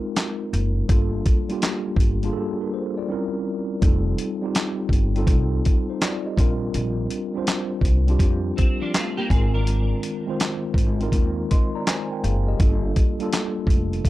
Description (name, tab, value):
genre	lo-fi hip hop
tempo	82 BPM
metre	4/4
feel	swing 65% on 16ths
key	Bb major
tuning	A4 = 438 Hz
part	mellow tine electric piano	accompaniment	0.0-14.1 s	Eb3 to C6	-26 LUFS	equal	medium stereo tremolo
part	dusty soul sampler-style drum kit	drums	0.2-14.1 s	handclaps, hi-hat, kick drum, snare drum	-20 LUFS	equal	none
part	upright bass	bass	0.5-14.0 s	F1 to F2	-23 LUFS	equal	none
part	clean electric guitar	second line	8.6-10.6 s	F3 to Bb4	-30 LUFS	equal	ensemble chorus, analog delay
room	little or no reverb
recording	dry, gritty hardware recording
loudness	-20 LUFS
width	side -16 dB against mid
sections	0.0-14.1 A section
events	break 2.4-3.8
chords	0.0 Ab69; 0.9 Gm7; 3.1 C7b9; 3.8 F9; 6.4 Bb69; 9.3 Ab69; 12.6 Gm7